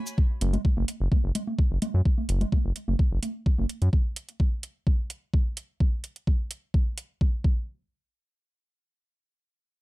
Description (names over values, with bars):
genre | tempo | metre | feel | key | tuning
minimal techno | 128 BPM | 4/4 | straight | unclear | A4 = 440 Hz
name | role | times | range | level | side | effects
electronic hi-hat | drums | 0.1-7.1 s | none | -36 LUFS | right 3 dB | overdrive, small room ambience
electronic kick drum | drums | 0.2-7.5 s | none | -23 LUFS | equal | overdrive, small room ambience
round analog bass | bass | 0.4-3.9 s | F#1 to F#2 | -24 LUFS | equal | sidechain pumping
congas | percussion | 0.4-3.7 s | none | -32 LUFS | right 1 dB | small room ambience, dub echo
room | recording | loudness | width
little or no reverb | dark, warm production | -24 LUFS | side -19 dB against mid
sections
0.0-7.7 A section; 7.7-9.8 B section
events
none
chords
none